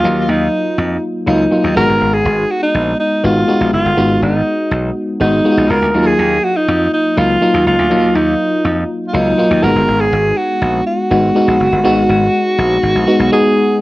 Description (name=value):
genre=1980s-style pop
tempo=122 BPM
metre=4/4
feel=straight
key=unclear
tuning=A4 = 440 Hz
part: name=bright alto saxophone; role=melody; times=0.0-13.8 s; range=Eb4 to Bb4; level=-15 LUFS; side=right 1 dB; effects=none
part: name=FM electric piano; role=accompaniment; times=0.0-13.8 s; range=Gb3 to Gb4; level=-15 LUFS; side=left 1 dB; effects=chorus
part: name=slap bass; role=bass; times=0.0-13.3 s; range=Gb1 to F2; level=-18 LUFS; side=equal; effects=none
room=moderate studio ambience, RT60 0.5 s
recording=home recording on cassette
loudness=-11 LUFS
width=side -18 dB against mid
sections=0.0-13.8 A section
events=none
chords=0.0 Ebm; 1.8 Abm7; 5.9 Ebmadd9; 9.6 Abm7